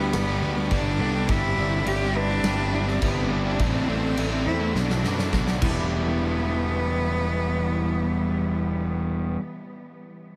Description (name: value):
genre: post-rock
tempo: 104 BPM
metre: 4/4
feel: straight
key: E minor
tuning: A4 = 440 Hz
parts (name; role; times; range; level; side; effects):
- bright cello; melody; 0.0-9.0 s; B3 to G4; -32 LUFS; equal; analog delay
- warm chamber string section; sustained chords; 0.0-9.0 s; E3 to E6; -42 LUFS; equal; none
- felt-muted upright piano; arpeggios; 0.0-6.2 s; E4 to D5; -41 LUFS; equal; none
- twangy electric guitar; arpeggios; 0.0-9.4 s; A2 to B4; -39 LUFS; equal; none
- crunchy overdriven guitar; riff; 0.0-9.4 s; B2 to A4; -33 LUFS; equal; none
- overdriven electric guitar; riff; 0.0-9.4 s; B2 to A4; -33 LUFS; equal; analog chorus
- fuzz fingered electric bass; bass; 0.0-9.4 s; E1 to F#2; -30 LUFS; equal; overdrive
- huge arena drum kit; drums; 0.1-5.8 s; crash cymbal, kick drum, snare drum; -31 LUFS; equal; none
room: moderate huge ambient reverb, RT60 7.1 s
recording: dreamy mix soaked in reverb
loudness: -24 LUFS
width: mono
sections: 0.0-5.9 A section; 5.9-8.2 B section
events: drum fill 4.8-5.9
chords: 0.0 Gmaj7; 1.3 Cmaj9/G; 3.6 Am7; 4.8 Bm7; 5.6 Em7